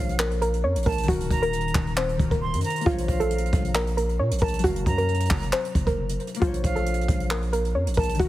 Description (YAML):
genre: hip hop, trap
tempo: 135 BPM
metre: 4/4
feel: half-time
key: Bb harmonic minor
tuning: A4 = 440 Hz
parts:
  - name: soft round pluck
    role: melody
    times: 0.0-8.3 s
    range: F4 to Db5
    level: -27 LUFS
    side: equal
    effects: chorus, low-pass filter, tape echo
  - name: jazz flute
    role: second line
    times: 0.0-8.2 s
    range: F5 to C6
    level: -33 LUFS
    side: right 5 dB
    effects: tape echo
  - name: concert harp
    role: accompaniment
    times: 0.0-8.3 s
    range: Eb3 to F5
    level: -32 LUFS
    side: left 5 dB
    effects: low-pass filter
  - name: distorted 808-style bass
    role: bass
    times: 0.0-8.3 s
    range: Eb1 to Bb2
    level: -26 LUFS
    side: equal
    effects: distortion
  - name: jazz brush drum kit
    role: drums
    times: 0.1-8.3 s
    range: handclaps, hi-hat, kick drum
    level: -26 LUFS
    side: equal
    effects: none
room: small room ambience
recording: heavily compressed radio sound, multiband compression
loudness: -22 LUFS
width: side -15 dB against mid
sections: 0.0-8.3 A section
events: none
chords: 0.0 Bbmadd9; 1.1 Ebm; 2.9 Bbmadd9; 4.6 Gbmaj7; 6.4 Bbmadd9